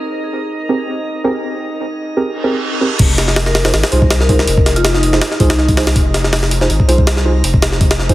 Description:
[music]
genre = drum and bass, jungle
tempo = 162 BPM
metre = 4/4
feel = swing 54% on 16ths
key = F minor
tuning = A4 = 440 Hz
[part]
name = drifting glass-harmonics texture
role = texture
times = 0.0-8.1 s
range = Eb4 to Eb5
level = -26 LUFS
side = right 1 dB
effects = chorus, built-in reverb
[part]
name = deep mellow chord stab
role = stabs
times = 0.7-8.1 s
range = C4 to C5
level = -20 LUFS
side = right 2 dB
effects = chorus, dub echo
[part]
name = reverse cymbal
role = sound effects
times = 2.4-3.0 s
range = none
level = -23 LUFS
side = right 4 dB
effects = none
[part]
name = saturated sub bass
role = bass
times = 3.0-8.1 s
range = F1 to C2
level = -16 LUFS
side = equal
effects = none
[part]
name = jungle sampler-style drum kit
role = drums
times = 3.0-8.1 s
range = crash cymbal, hi-hat, kick drum, snare drum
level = -13 LUFS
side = equal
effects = none
[part]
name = vibraphone with medium hard mallets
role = melody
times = 3.5-5.7 s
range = Eb4 to Bb4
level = -22 LUFS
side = left 2 dB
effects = dub echo
[sound]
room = light reverb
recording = heavily compressed radio sound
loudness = -12 LUFS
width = side -16 dB against mid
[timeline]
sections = 0.0-3.0 A section; 3.0-8.1 B section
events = reverse cymbal 2.4-3.0; drop 3.0-8.1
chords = 0.0 Abmaj9; 3.0 Fm7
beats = | 0.03 0.40 0.77 1.14 | 1.51 1.89 2.25 2.63 | 3.00 3.37 3.74 4.11 | 4.48 4.85 5.22 5.59 | 5.96 6.33 6.70 7.07 | 7.44 7.81

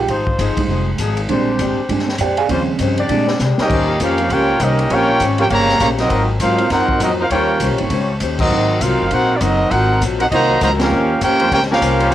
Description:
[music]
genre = jazz, big band swing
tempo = 200 BPM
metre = 4/4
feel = swing 61% on 8ths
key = unclear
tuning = A4 = 440 Hz
[part]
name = dark upright piano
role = accompaniment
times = 0.0-11.5 s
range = Db3 to Ab5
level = -22 LUFS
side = right 6 dB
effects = cassette tape
[part]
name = upright bass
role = bass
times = 0.0-12.1 s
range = F1 to C3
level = -21 LUFS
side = left 1 dB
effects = none
[part]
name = picked steel-string acoustic guitar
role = accompaniment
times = 0.1-12.1 s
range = Ab2 to C5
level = -24 LUFS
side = left 8 dB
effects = cassette tape
[part]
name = brilliant trombone section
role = sustained chords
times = 0.1-8.1, 10.6-12.1 s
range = Gb3 to D5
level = -24 LUFS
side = left 2 dB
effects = cassette tape
[part]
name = open jazz drum kit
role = drums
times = 0.1-12.1 s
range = crash cymbal, hi-hat, kick drum, ride cymbal, snare drum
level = -24 LUFS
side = left 1 dB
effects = none
[part]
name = warm trumpet section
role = melody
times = 3.6-12.1 s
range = C4 to Bb5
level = -16 LUFS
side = equal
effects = cassette tape
[part]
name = mellow trombone section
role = second line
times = 3.6-12.1 s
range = Db3 to G4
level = -21 LUFS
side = right 5 dB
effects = cassette tape
[sound]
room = light reverb, studio reverb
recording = home recording on cassette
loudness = -14 LUFS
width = side -12 dB against mid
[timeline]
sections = 0.0-3.7 A section; 3.7-12.1 B section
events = upright piano solo 0.0-3.7; drum fill 3.4-3.7; band accent 8.4, 10.8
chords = 0.0 Fm7; 1.3 Bb13; 2.5 Eb13; 3.1 Bb13; 3.7 Eb13; 6.1 Ab13; 7.3 Eb13; 8.5 Ab13; 10.9 Eb13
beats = | 0.09 0.39 0.69 0.99 | 1.29 1.59 1.89 2.19 | 2.49 2.79 3.10 3.40 | 3.70 4.00 4.30 4.60 | 4.90 5.20 5.50 5.80 | 6.10 6.41 6.71 7.01 | 7.31 7.61 7.91 8.21 | 8.51 8.81 9.11 9.41 | 9.71 10.01 10.31 10.61 | 10.91 11.21 11.51 11.81 | 12.11

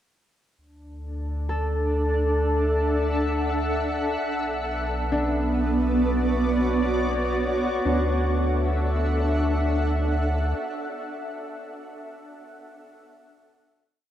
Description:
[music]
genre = ambient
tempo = 66 BPM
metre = 4/4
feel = straight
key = D major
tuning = A4 = 440 Hz
[part]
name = shimmering ambient pad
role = sustained chords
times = 1.7-11.3 s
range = B3 to F#5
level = -25 LUFS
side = equal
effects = chorus, built-in reverb
[part]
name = warm sub bass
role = bass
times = 0.6-10.5 s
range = B1 to D2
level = -26 LUFS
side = equal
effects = none
[part]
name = concert harp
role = arpeggios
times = 1.5-10.9 s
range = D4 to A4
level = -30 LUFS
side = equal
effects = diffuse ambient delay
[sound]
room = wet huge ambient reverb, RT60 8.4 s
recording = none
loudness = -22 LUFS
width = side -11 dB against mid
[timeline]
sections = 0.6-7.9 A section; 7.9-11.5 final chord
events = none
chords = 0.6 Dadd9; 4.2 Bm; 7.9 Dadd9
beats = | 0.58 1.49 2.40 3.31 | 4.21 5.12 6.03 6.94 | 7.85 8.76 9.67 10.58

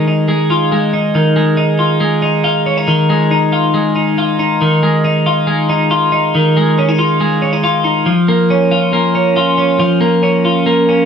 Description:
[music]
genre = indie pop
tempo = 139 BPM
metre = 4/4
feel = straight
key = Db major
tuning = A4 = 440 Hz
[part]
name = twelve-string electric guitar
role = solo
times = 0.0-11.1 s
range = Eb3 to F4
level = -11 LUFS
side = equal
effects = lush chorus
[sound]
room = wet studio reverb, RT60 0.5 s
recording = none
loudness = -11 LUFS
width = side -7 dB against mid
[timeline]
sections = 0.0-1.1 A section; 1.1-11.1 B section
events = none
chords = 0.0 Dbadd9 (rootless); 8.1 Bbm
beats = 0.28 0.72 | 1.15 1.58 2.02 2.45 | 2.88 3.31 3.75 4.18 | 4.61 5.04 5.47 5.91 | 6.34 6.77 7.20 7.64 | 8.07 8.50 8.93 9.37 | 9.80 10.23 10.66

